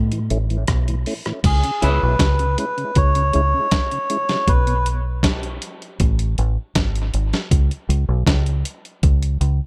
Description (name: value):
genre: dub reggae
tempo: 79 BPM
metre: 4/4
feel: straight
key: C# minor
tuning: A4 = 440 Hz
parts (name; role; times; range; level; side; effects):
- deep dub fingered electric bass; bass; 0.0-9.6 s; G#1 to A2; -21 LUFS; equal; none
- mellow tonewheel organ; accompaniment; 0.1-4.7 s; A2 to E4; -31 LUFS; equal; overdrive, chorus vibrato, slow rotary speaker, dub echo
- dusty soul sampler-style drum kit; drums; 0.1-9.6 s; crash cymbal, hi-hat, kick drum, rim click, snare drum; -22 LUFS; equal; none
- melodica; melody; 1.5-4.9 s; G#4 to C#5; -24 LUFS; equal; dub echo
- electric guitar at the edge of break-up; accompaniment; 1.8-2.0 s; E4 to E5; -30 LUFS; equal; tremolo, dub echo
room: light reverb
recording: none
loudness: -19 LUFS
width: mono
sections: 0.0-1.4 A section; 1.4-9.7 B section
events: break 0.0-1.4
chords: 0.0 A; 1.4 C#m; 4.5 N.C.